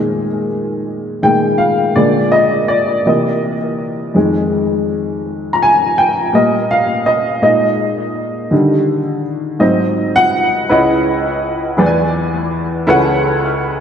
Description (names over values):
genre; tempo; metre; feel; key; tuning
gospel; 55 BPM (dotted quarters); 6/8; straight; unclear; A4 = 440 Hz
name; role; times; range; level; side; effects
warm upright piano; solo; 0.0-13.8 s; C#2 to Bb5; -12 LUFS; equal; lush chorus, analog delay
room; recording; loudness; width
wet lush hall reverb, RT60 2.9 s; dreamy mix soaked in reverb; -12 LUFS; side -8 dB against mid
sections
0.0-10.7 A section; 10.7-13.8 B section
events
upright piano solo 0.0-10.7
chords
0.0 Bb7sus4; 2.0 Bb7; 3.0 C7#9; 4.1 Fm7; 6.3 Ebadd9/Bb; 7.4 Bb7sus4; 8.5 Ebmaj7; 9.6 Ab7; 10.7 C#m11; 11.8 E7; 12.9 A69/C#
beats
0.86 | 1.96 3.05 | 4.14 5.24 | 6.33 7.42 | 8.52 9.61 | 10.70 11.80 | 12.89